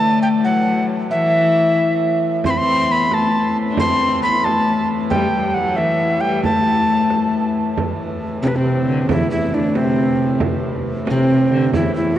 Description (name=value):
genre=medieval dance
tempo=90 BPM (dotted quarters)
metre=6/8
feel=straight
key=A dorian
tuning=A4 = 440 Hz
part: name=mellow tenor recorder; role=melody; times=0.0-12.2 s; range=C4 to C6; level=-18 LUFS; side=right 1 dB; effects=none
part: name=warm viola da gamba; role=second line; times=0.0-12.2 s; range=D2 to D4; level=-19 LUFS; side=left 3 dB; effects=none
part: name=dark hurdy-gurdy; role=drone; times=0.0-12.2 s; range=A2 to E3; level=-26 LUFS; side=equal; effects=none
part: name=frame drum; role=percussion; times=2.4-12.1 s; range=none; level=-26 LUFS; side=right 3 dB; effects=none
room=wet cathedral reverb, RT60 4.8 s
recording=worn, warbling old tape, cassette tape, warbly pitch drift, nothing above 10.3 kHz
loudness=-15 LUFS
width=side -12 dB against mid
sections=0.0-7.8 A section; 7.8-12.2 B section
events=none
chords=none